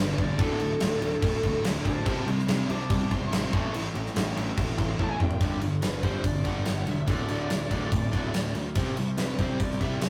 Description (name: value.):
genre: hard rock.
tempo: 144 BPM.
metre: 4/4.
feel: straight.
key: unclear.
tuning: A4 = 440 Hz.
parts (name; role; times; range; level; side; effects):
bluesy overdriven lead guitar; melody; 0.0-10.1 s; A4 to D6; -36 LUFS; equal; distortion.
crunchy overdriven guitar; riff; 0.0-5.4 s; D2 to C4; -38 LUFS; equal; none.
distorted electric guitar; riff; 0.0-10.1 s; D2 to C4; -36 LUFS; equal; overdrive.
high-gain distorted guitar; riff; 0.0-10.1 s; D2 to C4; -37 LUFS; equal; distortion.
fuzz picked electric bass; bass; 0.0-10.1 s; D1 to D2; -35 LUFS; equal; overdrive.
gated 80s drum kit; drums; 0.2-10.1 s; crash cymbal, kick drum, ride cymbal, snare drum, toms; -31 LUFS; equal; none.
room: moderate booth ambience, RT60 0.2 s.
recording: rough rehearsal-room recording.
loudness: -27 LUFS.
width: mono.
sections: 0.0-5.4 A section; 5.4-10.1 B section.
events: lead electric guitar solo 0.0-5.4; drum fill 5.0-5.4.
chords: 0.4 D5; 2.1 C; 3.5 A5; 5.4 G5; 7.1 D5; 8.8 C.